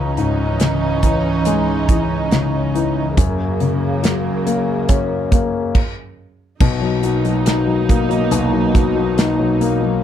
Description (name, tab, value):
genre	pop ballad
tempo	70 BPM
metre	4/4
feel	straight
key	B major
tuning	A4 = 440 Hz
part	warm grand piano	accompaniment	0.0-10.0 s	B1 to F#4	-18 LUFS	left 5 dB	none
part	dark studio string section	sustained chords	0.0-10.0 s	F#2 to D#4	-21 LUFS	right 6 dB	none
part	modern studio drum kit	drums	0.2-9.8 s	crash cymbal, hi-hat, kick drum, snare drum	-18 LUFS	right 1 dB	none
room	little or no reverb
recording	none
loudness	-15 LUFS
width	side -10 dB against mid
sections	0.0-6.6 A section; 6.6-10.0 B section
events	stop 5.7-6.6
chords	0.0 C#madd9; 3.2 F#; 6.6 Bmaj7